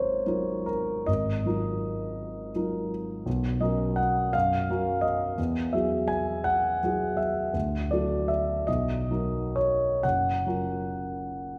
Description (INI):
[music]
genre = classical, impressionist solo piano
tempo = 42-59 BPM (dotted quarters)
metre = 6/8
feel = rubato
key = unclear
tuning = A4 = 441 Hz
[part]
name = warm concert grand piano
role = solo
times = 0.0-11.6 s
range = F#1 to G#5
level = -28 LUFS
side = equal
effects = none
[sound]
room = wet scoring stage reverb, RT60 1.8 s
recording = none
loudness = -28 LUFS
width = mono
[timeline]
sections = 0.0-11.6 A section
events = none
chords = 0.0 G#13; 3.3 Bsus2; 4.3 F#maj7; 5.4 Eadd9; 7.5 Dadd9; 8.7 Bmaj7; 10.0 F#maj7